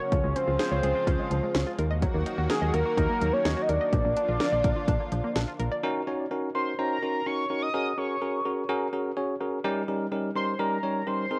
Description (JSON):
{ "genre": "synth-pop", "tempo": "126 BPM", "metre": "4/4", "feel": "straight", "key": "Eb dorian", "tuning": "A4 = 441 Hz", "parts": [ { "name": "fat analog lead", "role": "melody", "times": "0.0-11.4 s", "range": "Ab4 to Eb6", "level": "-31 LUFS", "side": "equal", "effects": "chorus, cassette tape" }, { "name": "lush unison pad", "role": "sustained chords", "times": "0.0-5.8 s", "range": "Db3 to Gb4", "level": "-37 LUFS", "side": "equal", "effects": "chorus, cassette tape" }, { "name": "analog pluck", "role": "arpeggios", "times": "0.0-5.8 s", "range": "F3 to Eb5", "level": "-37 LUFS", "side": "equal", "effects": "chorus, cassette tape, analog delay" }, { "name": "solid FM bass", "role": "bass", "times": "0.1-5.7 s", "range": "Bb1 to Eb2", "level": "-31 LUFS", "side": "equal", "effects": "none" }, { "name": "house drum kit", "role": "drums", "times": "0.1-5.7 s", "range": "hi-hat, kick drum, snare drum", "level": "-32 LUFS", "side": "equal", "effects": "cassette tape" }, { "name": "bell-like tine electric piano", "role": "accompaniment", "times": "5.8-11.4 s", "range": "G3 to Db5", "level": "-31 LUFS", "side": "equal", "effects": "cassette tape" } ], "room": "moderate spring reverb, RT60 1.3 s", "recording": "home recording on cassette", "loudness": "-27 LUFS", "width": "mono", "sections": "0.0-5.8 A section; 5.8-11.4 B section", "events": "none", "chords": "0.1 Db; 1.8 Ebm; 3.9 Bb; 5.8 Ebm7; 7.7 Gbadd9; 9.6 Eb7/G", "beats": "| 0.12 0.60 1.07 1.55 | 2.02 2.50 2.98 3.45 | 3.93 4.41 4.88 5.36 | 5.83 6.31 6.79 7.26 | 7.74 8.21 8.69 9.17 | 9.64 10.12 10.60 11.07" }